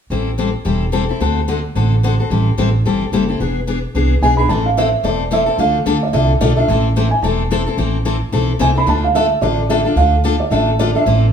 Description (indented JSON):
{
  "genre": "acoustic string swing (jazz manouche)",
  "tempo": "219 BPM",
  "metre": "4/4",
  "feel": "swing 58% on 8ths",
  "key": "A dorian",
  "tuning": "A4 = 441 Hz",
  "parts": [
    { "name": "picked steel-string acoustic guitar", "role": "accompaniment", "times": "0.1-11.3 s", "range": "D3 to A4", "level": "-18 LUFS", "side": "left 5 dB", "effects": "none" },
    { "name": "upright bass", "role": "bass", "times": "0.1-11.3 s", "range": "E1 to D2", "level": "-17 LUFS", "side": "right 1 dB", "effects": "none" },
    { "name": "felt-muted upright piano", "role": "melody", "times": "4.2-11.3 s", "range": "D5 to B5", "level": "-17 LUFS", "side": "right 4 dB", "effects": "none" }
  ],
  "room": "wet large studio reverb, RT60 0.9 s",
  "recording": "band playing live in one room",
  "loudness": "-13 LUFS",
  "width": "side -8 dB against mid",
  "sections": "0.1-4.5 A section; 4.5-11.3 B section",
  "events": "none",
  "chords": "0.1 Am7; 1.2 D7; 2.3 Am7; 3.4 E7; 4.5 Am; 5.6 Dm; 6.7 Am; 8.9 Dm"
}